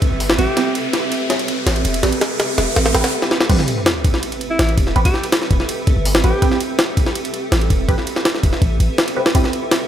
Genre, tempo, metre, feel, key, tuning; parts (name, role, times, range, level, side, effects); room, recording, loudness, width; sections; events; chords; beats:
drum and bass, jungle; 164 BPM; 4/4; straight; A minor; A4 = 440 Hz
jungle sampler-style drum kit; drums; 0.0-9.8 s; crash cymbal, hi-hat, kick drum, ride cymbal, snare drum; -17 LUFS; equal
riser and sub drop; sound effects; 0.0-5.0 s; -25 LUFS; equal
warm 808-style bass; bass; 0.1-8.9 s; E1 to A1; -18 LUFS; equal
breathy alto saxophone; melody; 0.4-0.8, 4.5-6.6 s; E4 to G4; -26 LUFS; equal; low-pass filter, dub echo
filtered dub chord stab; stabs; 0.4-9.4 s; C4 to B4; -24 LUFS; right 4 dB; phaser, lush chorus, dub echo
light reverb; -15 LUFS; side -10 dB against mid
0.0-3.5 A section; 3.5-9.9 B section
build-up 0.0-3.5; riser 0.0-3.1; filter sweep on synth stab 0.0-3.5; filter sweep on alto saxophone 0.0-3.5; drum fill 0.6-3.1, 3.2; stop 3.1-3.5; drop 3.5-9.9; impact 3.5-5.0
0.0 Am7; 9.3 Dm11 (rootless)
0.20 | 0.57 0.93 1.30 1.67 | 2.03 2.40 2.76 3.13 | 3.50 3.86 4.23 4.59 | 4.96 5.32 5.69 6.06 | 6.42 6.79 7.15 7.52 | 7.88 8.25 8.62 8.98 | 9.35 9.71